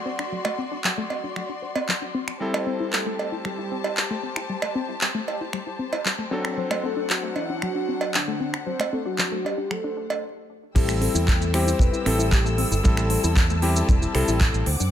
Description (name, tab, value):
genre	nu-disco, nu disco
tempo	115 BPM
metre	4/4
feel	straight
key	A dorian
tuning	A4 = 442 Hz
part	bright electric grand piano	accompaniment	0.0-14.7 s	F#3 to A4	-30 LUFS	left 2 dB	sidechain pumping, digital delay
part	dark studio string section	sustained chords	0.0-14.9 s	C4 to E6	-33 LUFS	left 2 dB	sidechain pumping
part	wide unison pluck	arpeggios	0.1-14.8 s	F#3 to C5	-31 LUFS	left 3 dB	sidechain pumping, ping-pong delay
part	pop drum kit	drums	0.2-14.9 s	crash cymbal, finger snaps, handclaps, hi-hat, shaker	-27 LUFS	right 1 dB	none
part	cowbell	percussion	0.4-10.2 s	none	-30 LUFS	right 5 dB	none
part	soft octave-layered synth lead	melody	2.4-12.7 s	D4 to C5	-30 LUFS	left 2 dB	chorus, phaser, cassette tape, ping-pong delay
part	fingered electric bass with an envelope filter	bass	10.8-14.9 s	E1 to F#2	-24 LUFS	equal	none
part	kick drum	drums	10.8-14.5 s	none	-20 LUFS	equal	none
room	light reverb, studio reverb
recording	none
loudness	-22 LUFS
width	side -10 dB against mid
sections	0.0-10.8 A section; 10.8-14.9 B section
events	filter sweep on synth arpeggio sound 0.0-10.8; stop 10.2-10.8; drop 10.8-14.9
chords	0.0 D7; 2.4 Am7; 6.3 D7; 10.8 Am7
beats	| 0.32 0.84 1.37 1.89 | 2.41 2.93 3.45 3.98 | 4.50 5.02 5.54 6.06 | 6.58 7.11 7.63 8.15 | 8.67 9.19 9.71 10.23 | 10.76 11.28 11.80 12.32 | 12.84 13.37 13.89 14.41